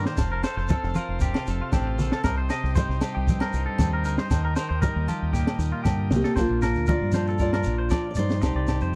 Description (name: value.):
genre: highlife guitar band.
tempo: 117 BPM.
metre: 4/4.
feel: straight.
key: Bb major.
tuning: A4 = 439 Hz.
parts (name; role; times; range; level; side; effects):
clean electric guitar; accompaniment; 0.0-9.0 s; G2 to Bb4; -35 LUFS; equal; spring reverb.
overdriven combo organ; sustained chords; 0.0-6.3 s; Bb4 to Bb5; -41 LUFS; equal; none.
clean electric guitar; arpeggios; 0.0-9.0 s; F4 to Eb5; -35 LUFS; equal; tape echo.
deep dub fingered electric bass; bass; 0.0-9.0 s; F1 to G2; -29 LUFS; equal; none.
compact cocktail drum kit; drums; 0.1-8.8 s; kick drum, snare drum; -29 LUFS; equal; none.
agogo bells; percussion; 0.2-8.8 s; none; -40 LUFS; equal; none.
congas; percussion; 0.2-8.5 s; none; -30 LUFS; equal; none.
shekere; percussion; 0.2-8.9 s; none; -36 LUFS; equal; none.
fingerpicked steel-string acoustic guitar; melody; 6.1-8.9 s; Bb3 to D5; -29 LUFS; equal; none.
room: little or no reverb.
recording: dry, close 1970s-style studio recording.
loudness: -25 LUFS.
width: mono.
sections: 0.0-6.4 A section; 6.4-9.0 B section.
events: drum fill 5.9-6.4.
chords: 0.2 F; 2.2 Cm; 4.3 Eb; 6.4 Bbadd9; 8.4 Cmadd9.